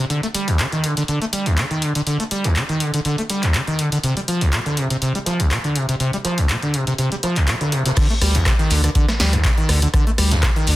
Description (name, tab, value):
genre	acid house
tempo	122 BPM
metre	4/4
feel	swing 54% on 16ths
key	D phrygian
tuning	A4 = 442 Hz
part	acid bass, saw	riff	0.0-10.8 s	C2 to A3	-19 LUFS	equal	tube saturation, lush chorus, tape echo
part	punchy analog drum machine	drums	0.1-10.8 s	crash cymbal, handclaps, hi-hat, rim click, snare drum	-24 LUFS	equal	none
part	swinging big-band drum kit	drums	0.1-10.8 s	hi-hat, snare drum	-33 LUFS	right 1 dB	none
part	electronic kick drum	drums	8.0-10.5 s	none	-18 LUFS	equal	overdrive
part	saturated sub bass	bass	8.2-10.8 s	D2	-17 LUFS	equal	tube saturation, sidechain pumping
room	moderate studio reverb, RT60 0.5 s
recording	dense, heavily limited modern master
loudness	-17 LUFS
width	side -16 dB against mid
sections	0.0-8.0 A section; 8.0-10.8 B section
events	drop 8.0-10.8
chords	0.1 D5; 4.0 C5; 8.0 D5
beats	| 0.10 0.59 1.08 1.58 | 2.07 2.56 3.05 3.54 | 4.04 4.53 5.02 5.51 | 6.00 6.49 6.99 7.48 | 7.97 8.46 8.95 9.45 | 9.94 10.43